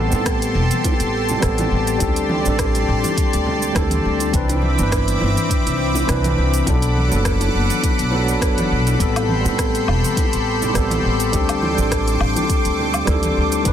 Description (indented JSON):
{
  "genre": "sunset chillout",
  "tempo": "103 BPM",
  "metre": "4/4",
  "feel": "swing 54% on 16ths",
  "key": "unclear",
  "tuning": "A4 = 440 Hz",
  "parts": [
    { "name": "bright tine electric piano", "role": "accompaniment", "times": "0.0-13.7 s", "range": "E3 to B4", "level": "-22 LUFS", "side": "moving between left 5 dB and right 3 dB", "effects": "auto-pan, tape echo" },
    { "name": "lush unison pad", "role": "sustained chords", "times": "0.0-13.7 s", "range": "C4 to D6", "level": "-23 LUFS", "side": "left 1 dB", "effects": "chorus" },
    { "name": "upright bass", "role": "bass", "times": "0.0-13.7 s", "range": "E1 to A2", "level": "-21 LUFS", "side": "equal", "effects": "none" },
    { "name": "deep house drum kit", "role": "drums", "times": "0.1-13.7 s", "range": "cabasa, hi-hat, rim click, woodblock", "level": "-26 LUFS", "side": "equal", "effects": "none" },
    { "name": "bongos and congas", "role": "percussion", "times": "0.1-13.6 s", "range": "none", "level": "-28 LUFS", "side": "right 1 dB", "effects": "none" },
    { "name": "electronic kick drum", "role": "drums", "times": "0.3-13.7 s", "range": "none", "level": "-22 LUFS", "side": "equal", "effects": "none" },
    { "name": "wind-like tuned noise texture", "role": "texture", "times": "10.0-13.7 s", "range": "D6", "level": "-30 LUFS", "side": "right 1 dB", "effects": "built-in reverb" }
  ],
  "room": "light reverb",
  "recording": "dense, heavily limited modern master",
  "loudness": "-16 LUFS",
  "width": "side -10 dB against mid",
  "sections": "0.0-13.7 A section",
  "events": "none",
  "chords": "0.0 Am9; 2.0 D7sus4; 4.3 Cmaj9; 6.7 Bm7; 9.0 Am9; 11.3 D7sus4"
}